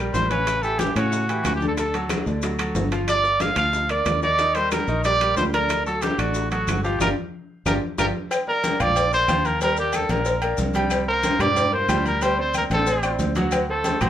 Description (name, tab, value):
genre	latin, salsa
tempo	184 BPM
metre	4/4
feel	straight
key	unclear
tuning	A4 = 440 Hz
part	bright concert grand piano	accompaniment	0.0-14.1 s	C#3 to G5	-27 LUFS	equal	none
part	fingered electric bass	bass	0.0-14.1 s	G1 to A2	-27 LUFS	equal	none
part	clear trumpet	melody	0.1-14.1 s	F#4 to F5	-22 LUFS	right 1 dB	none
part	congas	percussion	0.1-14.1 s	none	-30 LUFS	left 1 dB	none
part	maracas	percussion	0.1-14.1 s	none	-38 LUFS	left 5 dB	none
part	timbales and agogo bells	percussion	0.1-14.1 s	none	-31 LUFS	right 1 dB	none
part	bongos and cowbell	percussion	0.2-14.1 s	none	-30 LUFS	left 3 dB	none
part	claves	percussion	0.5-14.1 s	none	-34 LUFS	left 5 dB	none
room	moderate studio ambience, RT60 0.5 s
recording	band playing live in one room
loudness	-19 LUFS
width	side -10 dB against mid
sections	0.0-8.3 A section; 8.3-14.1 B section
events	band accent 7.0-8.3; drum fill 7.5-8.3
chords	0.5 A7; 1.8 D; 3.1 Gm7; 4.4 Ebmaj7; 5.7 D; 7.0 G7(no3); 8.3 Bbadd9; 9.6 Ebmaj7; 10.9 C5; 12.2 D7sus4; 13.5 D7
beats	0.14 | 0.47 0.80 1.12 1.45 | 1.78 2.10 2.43 2.76 | 3.08 3.41 3.74 4.07 | 4.39 4.72 5.04 5.37 | 5.70 6.03 6.35 6.68 | 7.01 7.33 7.66 7.99 | 8.31 8.64 8.96 9.29 | 9.62 9.94 10.27 10.59 | 10.92 11.24 11.57 11.89 | 12.22 12.54 12.87 13.20 | 13.52 13.85